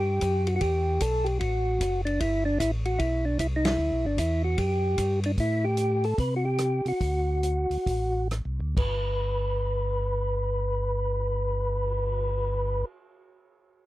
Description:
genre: soul jazz organ trio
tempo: 128-151 BPM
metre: 4/4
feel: swing 64% on 8ths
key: G major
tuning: A4 = 438 Hz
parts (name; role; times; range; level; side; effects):
- percussive tonewheel organ; melody; 0.0-12.9 s; D4 to B4; -27 LUFS; equal; slow rotary speaker
- mellow tonewheel organ; bass; 0.0-12.8 s; F#1 to C3; -28 LUFS; equal; slow rotary speaker
- vintage drum kit; drums; 0.2-12.4 s; crash cymbal, cymbal swell, hi-hat, kick drum, ride cymbal, rim click, snare drum; -33 LUFS; equal; none
room: little or no reverb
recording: dry, close 1970s-style studio recording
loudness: -24 LUFS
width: side -16 dB against mid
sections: 0.0-5.4 A section; 5.4-8.8 B section; 8.8-12.5 C section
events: band accent 3.6; slowing down 5.4-8.8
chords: 0.0 N.C.; 0.6 Emadd11; 1.4 F#m; 2.2 G6; 5.4 Am7; 7.0 D7; 8.8 G

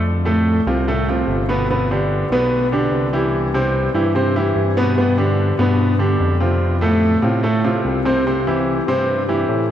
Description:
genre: latin, Cuban son and guajira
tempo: 146 BPM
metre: 4/4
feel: straight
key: C major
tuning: A4 = 442 Hz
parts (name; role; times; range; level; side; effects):
- smooth synth bass; bass; 0.0-9.7 s; G1 to A2; -20 LUFS; equal; none
- bright grand piano; arpeggios; 0.3-9.6 s; A2 to C5; -17 LUFS; equal; none
room: wet cathedral reverb, RT60 6.7 s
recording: in a vast, echoing space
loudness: -15 LUFS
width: side -10 dB against mid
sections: 0.0-9.7 A section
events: none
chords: 0.0 F; 1.7 G; 3.3 C; 5.0 G; 6.6 F; 8.3 C

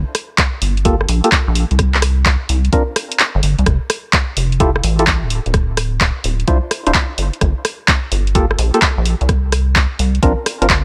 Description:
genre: UK garage, two-step garage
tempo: 128 BPM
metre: 4/4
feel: swing 66% on 16ths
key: unclear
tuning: A4 = 439 Hz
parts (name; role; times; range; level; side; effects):
- rubbery square bass; bass; 0.0-10.8 s; D1 to C2; -18 LUFS; equal; none
- punchy analog drum machine; drums; 0.1-10.8 s; handclaps, hi-hat, rim click; -19 LUFS; equal; none
- electronic kick drum; drums; 0.4-10.8 s; none; -19 LUFS; equal; overdrive
- percussive organ stab; stabs; 0.8-10.7 s; Bb3 to C5; -21 LUFS; equal; chorus, delay
room: little or no reverb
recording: none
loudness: -16 LUFS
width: mono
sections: 0.0-10.8 A section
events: filter sweep on synth stab 0.0-10.8; kick drops out 3.2-3.7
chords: 0.0 Gm9; 1.8 N.C.; 3.7 Fmaj9; 5.3 Dm9; 7.2 Gm9; 9.3 C9sus4

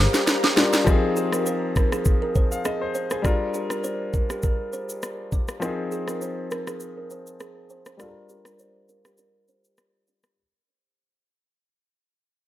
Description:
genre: afrobeats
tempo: 101 BPM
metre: 4/4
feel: swing 55% on 16ths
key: F dorian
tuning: A4 = 445 Hz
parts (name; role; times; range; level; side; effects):
- clear concert grand piano; accompaniment; 0.0-10.4 s; F3 to F5; -28 LUFS; left 3 dB; low-pass filter
- ethereal airy pad; sustained chords; 0.0-0.8 s; G4 to Bb5; -32 LUFS; left 1 dB; ensemble chorus, built-in reverb, sidechain pumping
- kalimba; riff; 0.0-10.2 s; G4 to D5; -30 LUFS; right 4 dB; low-pass filter, digital delay
- afro-pop drum kit; drums; 0.1-10.4 s; kick drum, rim click, shaker, snare drum; -22 LUFS; equal; none
- agogo bells; percussion; 0.4-0.6 s; none; -30 LUFS; right 5 dB; none
room: light reverb, studio reverb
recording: none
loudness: -21 LUFS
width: side -14 dB against mid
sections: 0.9-10.4 A section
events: drum fill 0.0-0.9; fade-out 0.9-10.4; filter sweep 0.9-10.4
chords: 0.0 Gm7; 0.9 Fm7; 3.2 Gm7; 5.6 Fm7; 8.0 Gm7

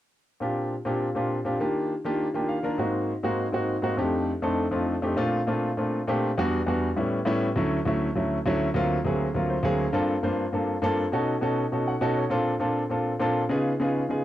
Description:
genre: jazz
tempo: 202 BPM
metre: 4/4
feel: straight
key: Bb major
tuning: A4 = 441 Hz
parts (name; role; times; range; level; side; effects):
- warm concert grand piano; solo; 0.4-14.2 s; D2 to G5; -24 LUFS; equal; none
room: light reverb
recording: dry, close 1970s-style studio recording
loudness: -24 LUFS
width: side -13 dB against mid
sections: 0.4-5.2 A section; 5.2-14.2 B section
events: grand piano fill 2.2-2.8, 9.3-9.9, 11.7-12.3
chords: 0.4 Bb6; 1.6 Ebmaj9; 2.8 Ab9; 4.0 F13; 5.2 Bbmaj9; 6.4 Em9; 7.0 A9; 7.6 Dmaj9; 8.8 D7alt; 9.9 Gm11; 11.1 B9; 12.3 Bbmaj9; 13.5 Db7

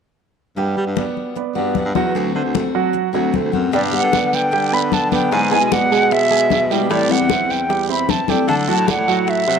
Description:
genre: latin, Cuban son and guajira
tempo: 152 BPM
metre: 4/4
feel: straight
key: G major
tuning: A4 = 440 Hz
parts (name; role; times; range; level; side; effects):
- picked steel-string acoustic guitar; accompaniment; 0.6-9.3 s; B2 to G#4; -23 LUFS; left 10 dB; none
- warm grand piano; arpeggios; 0.6-9.6 s; F#3 to G#5; -21 LUFS; right 11 dB; none
- clear baritone saxophone; bass; 0.6-9.6 s; D2 to G3; -24 LUFS; equal; none
- congas; percussion; 0.6-9.6 s; none; -25 LUFS; left 10 dB; none
- bright concert flute; melody; 3.7-9.6 s; D5 to B5; -18 LUFS; equal; none
- bongos; percussion; 3.7-9.6 s; none; -27 LUFS; left 11 dB; none
- guiro; percussion; 3.7-9.6 s; none; -28 LUFS; right 15 dB; none
room: moderate spring reverb, RT60 1.8 s, small room reverb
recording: 1960s-style stereo with parts hard left and right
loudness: -15 LUFS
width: side -6 dB against mid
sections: 0.6-3.7 A section; 3.7-9.6 B section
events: none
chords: 0.6 Gmaj7; 2.2 D7; 3.7 G; 5.3 E7/G#; 6.9 Am7; 8.5 Dadd9

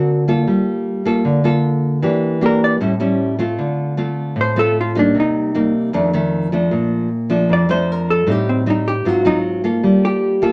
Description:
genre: bossa nova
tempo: 154 BPM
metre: 4/4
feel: straight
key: unclear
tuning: A4 = 436 Hz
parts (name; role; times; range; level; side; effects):
- nylon-string guitar; accompaniment; 0.0-10.5 s; F2 to Bb4; -18 LUFS; equal; none
- vintage hollow-body jazz guitar; melody; 2.5-10.5 s; C4 to D5; -20 LUFS; equal; none
room: wet club reverb, RT60 0.7 s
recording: none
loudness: -17 LUFS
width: mono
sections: 0.0-10.5 A section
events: hollow-body jazz guitar solo 0.0-10.5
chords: 0.5 Gm9; 2.0 Em7b5; 2.8 A7; 3.6 Dm7; 5.2 Cm7; 5.9 F6; 6.7 Bbmaj7; 8.3 Am7b5; 9.1 Ab13; 9.8 Gm9

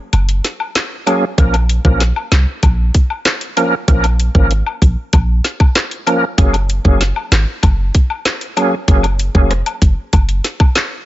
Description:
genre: dancehall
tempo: 96 BPM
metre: 4/4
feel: straight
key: unclear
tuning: A4 = 442 Hz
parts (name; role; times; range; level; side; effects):
- clean 808-style bass; bass; 0.1-10.4 s; F1 to C2; -14 LUFS; equal; none
- island pop drum kit; drums; 0.1-10.9 s; handclaps, hi-hat, kick drum, rim click, snare drum; -13 LUFS; equal; none
- woodblock and cabasa; percussion; 0.1-10.7 s; none; -23 LUFS; left 6 dB; none
- bright tonewheel organ; accompaniment; 1.1-9.5 s; F3 to Bb4; -17 LUFS; right 1 dB; overdrive, chorus vibrato, fast rotary speaker, sidechain pumping
room: digital ambience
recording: nothing above 7.7 kHz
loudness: -12 LUFS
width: side -15 dB against mid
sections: 0.0-11.1 A section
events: break 0.0-1.4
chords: 0.0 Gbadd9; 1.4 Bbm; 6.4 Gbadd9

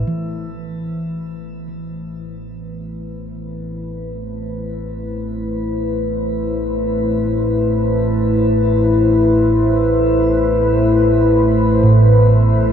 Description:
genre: dark ambient drone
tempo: free time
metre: none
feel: none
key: A minor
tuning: A4 = 440 Hz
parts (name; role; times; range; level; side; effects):
- deep dark ambient pad; sustained chords; 0.0-12.7 s; A3 to C5; -17 LUFS; left 1 dB; chorus, built-in reverb, shimmer reverb
- deep rumbling drone; drone; 0.0-12.7 s; A1 to A2; -21 LUFS; equal; built-in reverb, wide subtle chorus
- quartz singing bowl; arpeggios; 0.1-12.7 s; A2 to E3; -21 LUFS; right 3 dB; none
room: moderate huge ambient reverb, RT60 7.0 s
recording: none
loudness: -13 LUFS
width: side -8 dB against mid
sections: 0.1-12.7 A section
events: fade-in on synth drone 0.1-12.7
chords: 0.1 Am

